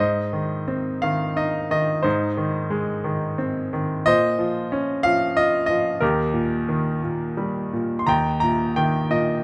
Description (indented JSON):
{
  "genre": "classical, lyrical solo piano",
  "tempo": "60 BPM (dotted quarters)",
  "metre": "6/8",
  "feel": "uneven beats, rubato",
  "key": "Ab major",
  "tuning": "A4 = 439 Hz",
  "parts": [
    { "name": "bright grand piano", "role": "solo", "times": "0.0-9.4 s", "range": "Eb2 to C6", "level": "-22 LUFS", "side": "equal", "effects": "none" }
  ],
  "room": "light reverb",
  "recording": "close, detailed microphones",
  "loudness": "-23 LUFS",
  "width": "mono",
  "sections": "0.0-9.4 A section",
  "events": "none",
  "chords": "0.0 Ab; 4.1 Bbmadd9; 6.0 Eb",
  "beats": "1.03 | 2.05 3.06 | 4.06 5.04 | 6.01 7.02 | 8.08 9.12"
}